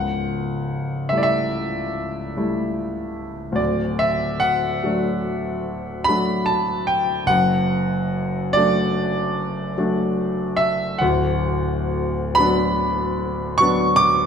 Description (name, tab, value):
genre	classical, romantic nocturne for solo piano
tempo	42-50 BPM (dotted quarters)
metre	9/8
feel	rubato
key	D major, B minor from 11.0 s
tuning	A4 = 441 Hz
part	warm grand piano	solo	0.0-14.3 s	C#1 to D6	-19 LUFS	equal	none
room	moderate recital hall reverb, RT60 1.5 s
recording	none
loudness	-19 LUFS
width	side -7 dB against mid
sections	0.0-14.3 A section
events	none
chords	0.0 A7/C#; 3.6 D; 7.3 D/F#; 11.0 Bm/D